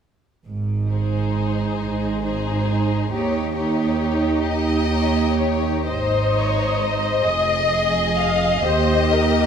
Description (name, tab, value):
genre	classical, slow romantic movement for string orchestra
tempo	40-46 BPM (dotted quarters)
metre	12/8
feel	rubato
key	Ab major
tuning	A4 = 441 Hz
part	bright studio cello section	bass	0.5-9.5 s	Eb2 to Ab2	-24 LUFS	right 4 dB	none
part	rich studio double bass section	bass	0.5-9.5 s	F1 to Eb2	-25 LUFS	right 3 dB	none
part	rich studio violin section	melody	0.9-9.5 s	C5 to F5	-25 LUFS	left 5 dB	none
part	rich chamber violin section	second line	0.9-9.5 s	Eb4 to Eb5	-25 LUFS	left 3 dB	none
part	rich studio viola section	accompaniment	0.9-9.5 s	Eb4 to Eb5	-24 LUFS	right 2 dB	none
room	moderate scoring stage reverb, RT60 1.9 s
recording	none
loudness	-18 LUFS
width	side -7 dB against mid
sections	0.5-5.9 A section; 5.9-9.5 B section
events	none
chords	0.5 Ab; 3.1 Eb7; 5.9 Ab; 8.6 Eb